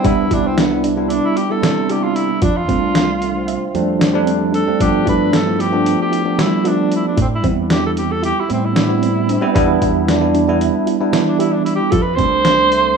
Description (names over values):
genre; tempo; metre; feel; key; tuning
progressive instrumental, band music in an uneven meter; 227 BPM (eighths); 9/8; straight; A minor; A4 = 441 Hz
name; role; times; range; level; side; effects
warm tenor saxophone; melody; 0.0-13.0 s; B3 to C5; -19 LUFS; right 2 dB; tape echo
bell-like tine electric piano; accompaniment; 0.0-13.0 s; F3 to E4; -17 LUFS; right 2 dB; medium stereo tremolo
soft round pluck; arpeggios; 0.0-12.7 s; C4 to E5; -25 LUFS; left 1 dB; chorus, tape echo
modern bright fingered electric bass; bass; 0.0-13.0 s; C2 to G3; -21 LUFS; right 2 dB; none
dusty soul sampler-style drum kit; drums; 0.0-12.8 s; hi-hat, kick drum, snare drum; -21 LUFS; right 1 dB; overdrive
trombone with cup mute; second line; 3.2-4.4, 9.3-13.0 s; A3 to E4; -25 LUFS; right 2 dB; none
room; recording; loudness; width
moderate plate reverb, RT60 2.2 s; rough home demo mix, studio ambience; -14 LUFS; side -6 dB against mid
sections
0.0-13.0 A section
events
tenor saxophone solo 0.0-13.0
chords
0.1 Cmaj7; 2.4 F6; 4.8 G7; 7.2 Am7; 9.6 Em7; 11.9 F6